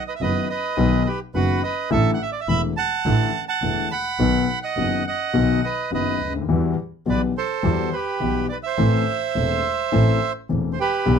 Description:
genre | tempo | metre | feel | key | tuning
tango | 105 BPM | 4/4 | rubato | unclear | A4 = 442 Hz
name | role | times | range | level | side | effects
bandoneon | melody | 0.0-11.2 s | F#4 to B5 | -23 LUFS | right 6 dB | none
dark concert grand piano | accompaniment | 0.2-11.2 s | E1 to A4 | -22 LUFS | left 6 dB | none
clear double bass | bass | 0.2-11.2 s | E1 to E2 | -24 LUFS | right 3 dB | none
room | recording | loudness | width
light reverb | close, detailed microphones | -19 LUFS | side -7 dB against mid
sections
0.0-11.2 A section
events
none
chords
0.0 B; 1.9 Asus4; 4.2 B; 6.5 Emadd9; 8.8 Am

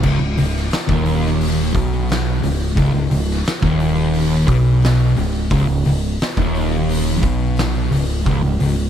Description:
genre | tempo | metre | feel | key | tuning
stoner and doom metal | 88 BPM | 4/4 | straight | unclear | A4 = 440 Hz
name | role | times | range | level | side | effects
fuzz guitar | riff | 0.0-8.9 s | C#2 to B2 | -20 LUFS | right 8 dB | distortion
thick fuzz guitar | riff | 0.0-8.9 s | C#2 to B2 | -20 LUFS | left 7 dB | distortion
growling picked electric bass | bass | 0.0-8.9 s | C#1 to B1 | -21 LUFS | equal | overdrive
oversized low-tuned drum kit | drums | 0.0-8.8 s | crash cymbal, hi-hat, kick drum, snare drum | -23 LUFS | equal | none
room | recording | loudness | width
small room ambience | none | -15 LUFS | side -9 dB against mid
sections
0.0-8.9 A section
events
none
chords
0.0 Badd9/C#

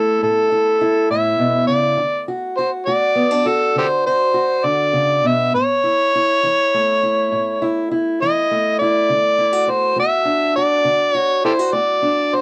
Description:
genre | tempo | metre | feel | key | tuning
acoustic country blues, solo or duo | 68 BPM (dotted quarters) | 12/8 | straight | unclear | A4 = 440 Hz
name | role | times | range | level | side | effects
overdriven harmonica | melody | 0.0-12.4 s | G4 to E5 | -18 LUFS | equal | none
fingerpicked steel-string acoustic guitar | accompaniment | 0.0-12.4 s | A2 to F#4 | -24 LUFS | equal | cassette tape
room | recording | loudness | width
light reverb | home recording on cassette | -17 LUFS | mono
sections
0.0-12.4 A section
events
none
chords
0.0 A; 2.0 D; 5.5 A; 9.1 D

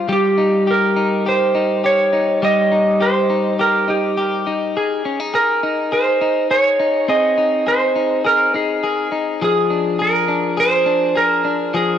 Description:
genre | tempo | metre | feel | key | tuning
dream pop | 103 BPM | 4/4 | straight | unclear | A4 = 440 Hz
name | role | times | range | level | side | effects
clean electric guitar | arpeggios | 0.0-12.0 s | F3 to Ab4 | -19 LUFS | left 4 dB | wide subtle chorus, shimmer reverb, tape echo
clean lap steel guitar | melody | 0.1-12.0 s | G4 to Eb5 | -16 LUFS | right 2 dB | shimmer reverb, tape echo
room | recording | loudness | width
moderate scoring stage reverb, RT60 1.9 s, digital ambience | dry, gritty hardware recording, nothing above 10.9 kHz | -14 LUFS | side -9 dB against mid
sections
0.0-12.0 A section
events
none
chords
0.1 Eb6/G; 4.8 Bb9sus4 (rootless); 9.4 Bb7

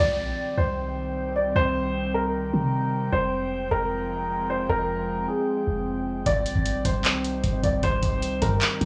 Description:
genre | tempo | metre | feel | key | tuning
hip hop, trap | 153 BPM | 4/4 | half-time | C minor | A4 = 438 Hz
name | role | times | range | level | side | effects
dark baby grand piano | melody | 0.0-8.9 s | Ab4 to D5 | -29 LUFS | equal | none
airy breathy pad | sustained chords | 0.0-8.9 s | Eb3 to G5 | -32 LUFS | equal | chorus
clean 808-style bass | bass | 0.0-8.9 s | F1 to C3 | -31 LUFS | equal | none
booming analog drum machine | drums | 6.3-8.9 s | handclaps, hi-hat, kick drum | -28 LUFS | equal | vintage 12-bit sampler grit
room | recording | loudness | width
little or no reverb | dry, gritty hardware recording, transformer saturation, studio ambience | -25 LUFS | mono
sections
0.0-8.9 A section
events
none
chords
0.0 Cm; 3.1 Fmadd9; 6.3 Cm

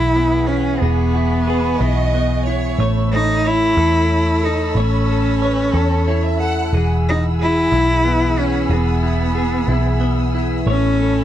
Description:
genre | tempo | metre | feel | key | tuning
six-eight pop ballad | 61 BPM (dotted quarters) | 6/8 | straight | E major | A4 = 441 Hz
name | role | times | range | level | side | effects
rich cello | melody | 0.0-11.2 s | B3 to E4 | -19 LUFS | equal | none
direct-recorded clean electric guitar | accompaniment | 0.0-11.2 s | E3 to C#5 | -22 LUFS | left 1 dB | double-tracked left and right
warm studio string section | sustained chords | 0.0-11.2 s | G#4 to E6 | -28 LUFS | right 2 dB | none
vintage muted picked electric bass | bass | 0.0-11.2 s | E1 to E2 | -18 LUFS | equal | none
warm chamber violin section | second line | 1.5-6.9 s | A4 to F#5 | -25 LUFS | right 3 dB | none
room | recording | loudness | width
light reverb | dry, close 1970s-style studio recording | -15 LUFS | side -11 dB against mid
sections
0.0-11.2 A section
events
none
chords
0.0 Eadd9; 2.8 Aadd9; 6.7 Eadd9; 10.7 Aadd9

